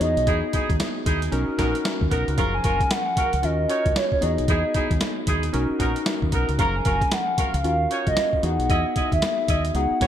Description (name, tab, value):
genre	R&B, new jack swing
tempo	114 BPM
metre	4/4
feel	swing 62% on 16ths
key	unclear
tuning	A4 = 440 Hz
part	hollow clarinet-like synth lead	melody	0.0-10.1 s	C#5 to A#5	-25 LUFS	equal	chorus
part	warm analog keys	accompaniment	0.0-10.1 s	E#3 to A#4	-28 LUFS	left 2 dB	chorus
part	deep dub fingered electric bass	bass	0.0-10.1 s	F#1 to E2	-26 LUFS	equal	none
part	boom bap sampler-style drum kit	drums	0.0-10.1 s	hi-hat, kick drum, snare drum	-25 LUFS	equal	none
part	warm horn section	stabs	0.3-10.1 s	B3 to D#5	-29 LUFS	right 1 dB	none
room	moderate plate reverb, RT60 2.3 s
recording	bright 1980s-style digital production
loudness	-20 LUFS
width	side -10 dB against mid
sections	0.0-10.1 A section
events	none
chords	0.0 Emaj7; 1.3 Bmaj7; 2.4 F#maj7; 3.4 D#m7; 4.2 Emaj7; 5.5 Bmaj7; 6.6 F#maj7; 7.6 D#m7; 8.4 Emaj7